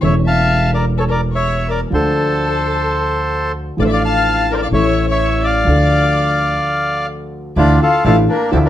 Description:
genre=tango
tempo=127 BPM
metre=4/4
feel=rubato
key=D minor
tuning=A4 = 440 Hz
part: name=bandoneon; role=melody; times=0.0-8.7 s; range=A3 to A5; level=-17 LUFS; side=equal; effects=none
part: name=warm violin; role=second line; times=0.0-8.7 s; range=A4 to F5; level=-23 LUFS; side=left 6 dB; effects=none
part: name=dark grand piano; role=accompaniment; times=0.0-8.7 s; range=E1 to A4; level=-18 LUFS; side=equal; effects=none
part: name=upright bass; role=bass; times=0.0-8.7 s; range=E1 to D2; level=-19 LUFS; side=equal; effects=none
part: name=bandoneon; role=stabs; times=7.6-8.7 s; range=F3 to E4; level=-25 LUFS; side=right 1 dB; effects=none
room=wet studio reverb, RT60 0.8 s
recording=none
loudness=-13 LUFS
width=side -12 dB against mid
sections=0.0-7.6 A section; 7.6-8.7 A section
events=break 6.6-7.6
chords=0.0 A; 1.9 Dm; 3.8 Dm/A; 4.7 A; 5.7 Dm; 7.6 Dmadd9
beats=| 0.02 0.50 0.97 1.44 | 1.91 2.38 2.85 3.31 | 3.78 4.25 4.72 5.19 | 5.66 6.13 6.61 7.09 | 7.57 8.05 8.52

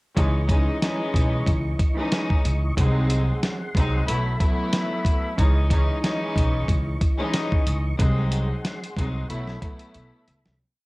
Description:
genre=hip hop, boom-bap hip-hop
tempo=92 BPM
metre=4/4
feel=swing 55% on 16ths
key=C# minor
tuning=A4 = 440 Hz
part: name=warm chamber string section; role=accompaniment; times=0.2-10.5 s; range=E3 to E4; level=-28 LUFS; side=equal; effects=high-pass filter, low-pass filter, cassette tape
part: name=tonewheel organ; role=sustained chords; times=0.2-10.6 s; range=E3 to C#6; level=-34 LUFS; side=equal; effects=chorus vibrato, slow rotary speaker, high-pass filter, low-pass filter, cassette tape
part: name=upright bass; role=bass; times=0.2-10.6 s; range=B1 to C#2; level=-23 LUFS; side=equal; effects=transformer saturation
part: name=dusty soul sampler-style drum kit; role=drums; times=0.2-10.6 s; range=hi-hat, kick drum, snare drum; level=-23 LUFS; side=equal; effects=cassette tape
room=little or no reverb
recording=home recording on cassette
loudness=-20 LUFS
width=side -22 dB against mid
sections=0.2-10.6 hook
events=fade-out 8.0-10.6; drum fill 9.9-10.6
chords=0.2 C#madd9; 2.8 G#7/B#; 4.1 B7sus4; 5.4 C#madd9; 8.0 G#7/B#; 9.3 B7sus4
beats=| 0.16 0.82 1.47 2.12 | 2.77 3.42 4.08 4.73 | 5.38 6.03 6.69 7.34 | 7.99 8.64 9.29 9.95

